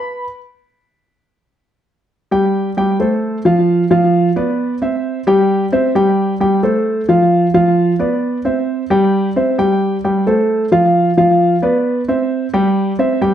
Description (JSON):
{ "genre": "latin", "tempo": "132 BPM", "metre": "4/4", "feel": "straight", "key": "C major", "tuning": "A4 = 438 Hz", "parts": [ { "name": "dark concert grand piano", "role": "solo", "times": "0.0-13.3 s", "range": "F3 to B5", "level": "-12 LUFS", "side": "equal", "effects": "slapback echo" } ], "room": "moderate studio reverb, RT60 0.7 s", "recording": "none", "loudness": "-12 LUFS", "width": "side -10 dB against mid", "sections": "0.0-2.3 A section; 2.3-13.3 B section", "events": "grand piano solo 0.0-2.3", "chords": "0.5 N.C.; 2.3 C5; 3.2 F; 4.1 Dm13/F; 5.0 C6; 6.9 F; 7.8 Dm13/F; 8.7 C6; 10.5 F; 11.4 Dm13/F; 12.3 C" }